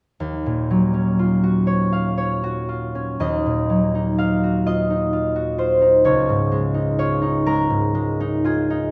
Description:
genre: classical, solo harp piece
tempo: 38-43 BPM (dotted quarters)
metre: 6/8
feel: rubato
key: Eb minor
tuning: A4 = 440 Hz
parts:
  - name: concert harp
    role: solo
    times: 0.2-8.9 s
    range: Db2 to F5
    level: -20 LUFS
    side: equal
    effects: none
room: wet stone room reverb, RT60 1.3 s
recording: dark, warm production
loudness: -20 LUFS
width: mono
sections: 0.2-3.2 A section; 3.2-8.9 B section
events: none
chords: 0.2 Ebm9; 3.2 Ebmadd9; 6.1 Dbadd9

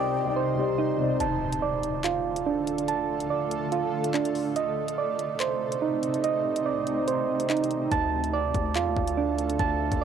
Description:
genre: hip hop, drill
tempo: 143 BPM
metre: 4/4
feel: half-time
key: D phrygian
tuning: A4 = 439 Hz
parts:
  - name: dark concert grand piano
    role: accompaniment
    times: 0.0-1.2 s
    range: C3 to D5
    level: -28 LUFS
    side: left 9 dB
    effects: cassette tape
  - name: granular cloud pad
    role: sustained chords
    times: 0.0-10.0 s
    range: C2 to C5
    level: -32 LUFS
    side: left 1 dB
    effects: built-in reverb, cassette tape
  - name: soft electric-piano-like synth keys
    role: arpeggios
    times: 0.0-10.0 s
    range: D4 to D6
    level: -26 LUFS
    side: right 8 dB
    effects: chorus, low-pass filter, cassette tape, analog delay
  - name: drill drum kit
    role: drums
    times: 1.2-10.0 s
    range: handclaps, hi-hat, kick drum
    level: -32 LUFS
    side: left 2 dB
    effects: overdrive
  - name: impact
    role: sound effects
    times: 1.2-2.9 s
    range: none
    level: -38 LUFS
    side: left 2 dB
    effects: none
  - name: distorted 808-style bass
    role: bass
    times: 7.9-10.0 s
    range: D2 to F2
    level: -30 LUFS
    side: left 2 dB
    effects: distortion
room: light reverb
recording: home recording on cassette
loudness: -24 LUFS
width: side -8 dB against mid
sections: 0.0-1.2 A section; 1.2-10.0 B section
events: break 0.0-1.2; kick muted 1.2-7.9; impact 1.2-2.9; filter sweep on synth keys 1.2-7.9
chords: 0.0 Cmadd9; 1.2 Dm; 4.6 Cmadd9; 7.9 Dm

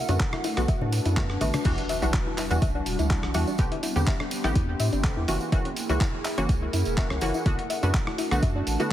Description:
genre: deep house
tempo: 124 BPM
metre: 4/4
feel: swing 53% on 16ths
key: E minor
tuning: A4 = 435 Hz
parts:
  - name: airy breathy pad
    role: sustained chords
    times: 0.0-8.9 s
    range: G3 to G#4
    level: -35 LUFS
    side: right 1 dB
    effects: chorus, phaser, sidechain pumping
  - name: warbly tape-like pad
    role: texture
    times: 0.0-8.9 s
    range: G3 to C6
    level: -35 LUFS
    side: left 1 dB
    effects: chorus, built-in reverb, sidechain pumping
  - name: soft round pluck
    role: arpeggios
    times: 0.1-8.9 s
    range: C#4 to E5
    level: -33 LUFS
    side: left 3 dB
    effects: chorus, sidechain pumping, dub echo
  - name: filtered dub chord stab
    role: stabs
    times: 0.1-8.9 s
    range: D3 to G4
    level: -31 LUFS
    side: equal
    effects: ensemble chorus, cassette tape, sidechain pumping, tape echo
  - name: round analog bass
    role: bass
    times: 0.1-8.8 s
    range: E1 to A2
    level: -27 LUFS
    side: equal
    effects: sidechain pumping
  - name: dusty soul sampler-style drum kit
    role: drums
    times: 0.1-8.9 s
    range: crash cymbal, handclaps, hi-hat, rim click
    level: -34 LUFS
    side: equal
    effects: none
  - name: tambourine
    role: percussion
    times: 0.1-8.9 s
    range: none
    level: -39 LUFS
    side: right 4 dB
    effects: none
  - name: electronic kick drum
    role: drums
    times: 0.2-8.5 s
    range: none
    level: -25 LUFS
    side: equal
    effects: overdrive
  - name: congas and bongos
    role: percussion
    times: 0.3-1.6 s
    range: none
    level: -35 LUFS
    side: left 2 dB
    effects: none
  - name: impact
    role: sound effects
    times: 1.8-3.6 s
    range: none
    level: -38 LUFS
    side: equal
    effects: none
room: light reverb, digital ambience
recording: heavily compressed radio sound, multiband compression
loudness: -23 LUFS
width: side -12 dB against mid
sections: 0.0-1.7 A section; 1.7-8.9 B section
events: drum fill 1.2-1.7; band accent 1.5; drop 1.7-8.9; impact 1.7-3.6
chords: 0.0 Bm7; 1.7 Em9; 3.6 Am11; 5.3 F#7; 7.5 Bm7

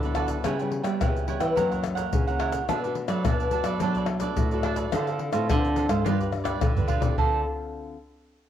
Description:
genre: samba and choro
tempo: 107 BPM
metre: 4/4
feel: straight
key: D major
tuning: A4 = 436 Hz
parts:
  - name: cavaquinho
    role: accompaniment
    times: 0.0-7.4 s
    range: D4 to G5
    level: -30 LUFS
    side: right 8 dB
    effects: cassette tape
  - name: nylon-string guitar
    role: accompaniment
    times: 0.0-8.0 s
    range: F#2 to B4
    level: -35 LUFS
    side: left 7 dB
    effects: cassette tape
  - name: nylon-string guitar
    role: bass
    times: 0.0-7.4 s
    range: G2 to G3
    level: -28 LUFS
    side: equal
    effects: none
  - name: tube shaker, pandeiro, surdo and tamborim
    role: percussion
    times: 0.0-7.3 s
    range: none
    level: -27 LUFS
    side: left 2 dB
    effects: none
room: moderate spring reverb, RT60 1.4 s, studio reverb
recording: home recording on cassette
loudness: -23 LUFS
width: side -10 dB against mid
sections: 0.0-7.2 A section; 7.2-8.5 B section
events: drum fill 6.5-7.2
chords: 0.4 C#m7b5; 1.6 F#7; 2.7 Bm7; 4.9 Dm7; 6.1 G7; 7.2 Dm7

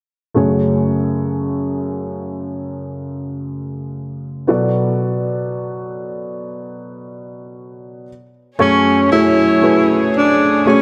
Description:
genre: pop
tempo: 58 BPM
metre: 4/4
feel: straight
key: F# minor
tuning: A4 = 440 Hz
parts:
  - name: dark upright piano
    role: accompaniment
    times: 0.3-10.8 s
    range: F#2 to D5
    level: -20 LUFS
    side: equal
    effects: none
  - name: breathy alto saxophone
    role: melody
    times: 8.6-10.8 s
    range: C#4 to E4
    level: -16 LUFS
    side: equal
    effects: none
  - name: warm studio string section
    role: sustained chords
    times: 8.6-10.8 s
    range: F#3 to C#5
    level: -24 LUFS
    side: equal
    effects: none
room: moderate lush hall reverb, RT60 2.3 s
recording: dark, warm production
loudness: -17 LUFS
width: mono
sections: 0.4-8.6 A section; 8.6-10.8 B section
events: none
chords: 0.4 F#madd9; 4.5 Bm7; 8.1 N.C.; 8.6 F#madd9

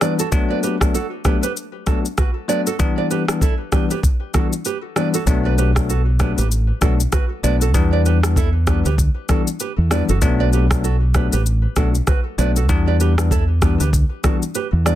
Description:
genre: afrobeats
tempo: 97 BPM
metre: 4/4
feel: swing 58% on 16ths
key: B minor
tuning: A4 = 440 Hz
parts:
  - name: bell-like tine electric piano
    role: accompaniment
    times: 0.0-15.0 s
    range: E3 to D4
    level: -22 LUFS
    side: left 5 dB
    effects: plate reverb
  - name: nylon-string guitar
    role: riff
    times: 0.0-15.0 s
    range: E4 to D5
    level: -25 LUFS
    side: right 9 dB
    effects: ping-pong delay
  - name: afro-pop drum kit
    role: drums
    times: 0.0-15.0 s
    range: kick drum, rim click, shaker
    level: -19 LUFS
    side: equal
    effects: soft clipping on snare
  - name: fingered electric bass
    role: bass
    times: 5.3-15.0 s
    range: F#1 to E2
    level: -17 LUFS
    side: equal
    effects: none
room: light reverb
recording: dense, heavily limited modern master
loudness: -16 LUFS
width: side -13 dB against mid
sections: 0.0-15.0 A section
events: none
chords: 0.3 Bm7; 2.8 Em7; 5.3 Bm7; 7.7 Em7; 10.2 Bm7; 12.7 Em7

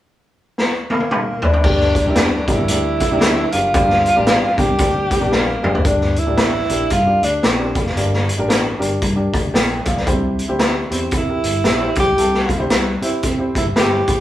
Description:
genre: uptempo 1960s-style soul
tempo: 114 BPM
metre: 4/4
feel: swing 60% on 8ths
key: G dorian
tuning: A4 = 440 Hz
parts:
  - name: raw garage drum kit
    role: drums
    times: 0.6-14.2 s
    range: crash cymbal, hi-hat, kick drum, snare drum, toms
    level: -18 LUFS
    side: equal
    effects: none
  - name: breathy tenor saxophone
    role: melody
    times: 0.9-14.2 s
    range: Bb3 to G4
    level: -19 LUFS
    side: equal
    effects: none
  - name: warm baby grand piano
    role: accompaniment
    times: 1.6-14.2 s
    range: G2 to Bb5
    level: -23 LUFS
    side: left 1 dB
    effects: none
  - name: tonewheel organ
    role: sustained chords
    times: 1.6-5.8 s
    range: D3 to D4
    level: -29 LUFS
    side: equal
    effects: overdrive, stopped rotary speaker
  - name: vintage muted fingered electric bass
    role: bass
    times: 1.6-14.2 s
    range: F1 to C3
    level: -23 LUFS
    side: equal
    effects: none
  - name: congas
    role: percussion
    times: 2.1-5.6 s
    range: none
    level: -29 LUFS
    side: equal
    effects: none
  - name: electric guitar through a small old amp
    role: stabs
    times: 2.2-13.9 s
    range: G4 to G5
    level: -26 LUFS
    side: right 1 dB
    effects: none
room: moderate small room reverb, RT60 0.5 s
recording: band playing live in one room, small room ambience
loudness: -14 LUFS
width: side -13 dB against mid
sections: 0.0-1.6 A section; 1.6-5.9 B section; 5.9-14.2 C section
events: drum fill 0.6-1.6, 5.3-5.9; grand piano fill 9.0-10.1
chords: 0.0 N.C.; 1.6 Gm; 10.1 C

